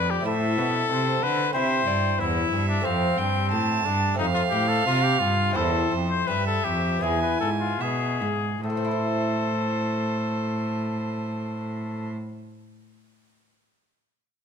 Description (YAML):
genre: classical, baroque-style sonata movement with continuo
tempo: 72-94 BPM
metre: 4/4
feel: rubato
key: A minor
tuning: A4 = 441 Hz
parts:
  - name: clear trumpet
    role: melody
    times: 0.0-12.1 s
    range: C4 to C5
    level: -27 LUFS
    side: left 7 dB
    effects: none
  - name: rich violin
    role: second line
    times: 0.0-12.1 s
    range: C5 to A5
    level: -29 LUFS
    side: right 6 dB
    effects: none
  - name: lute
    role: accompaniment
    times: 0.0-12.4 s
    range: E2 to C5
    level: -30 LUFS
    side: equal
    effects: none
  - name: rich cello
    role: bass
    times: 0.0-12.1 s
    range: E2 to D3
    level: -27 LUFS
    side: right 1 dB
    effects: none
room: moderate recital hall reverb, RT60 1.5 s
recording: none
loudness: -22 LUFS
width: side -7 dB against mid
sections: 0.0-8.6 A section; 8.6-11.9 B section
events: slowing down 1.5-8.6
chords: 0.3 Am; 1.5 C; 2.8 F; 5.6 Am/E; 7.0 E; 8.6 Am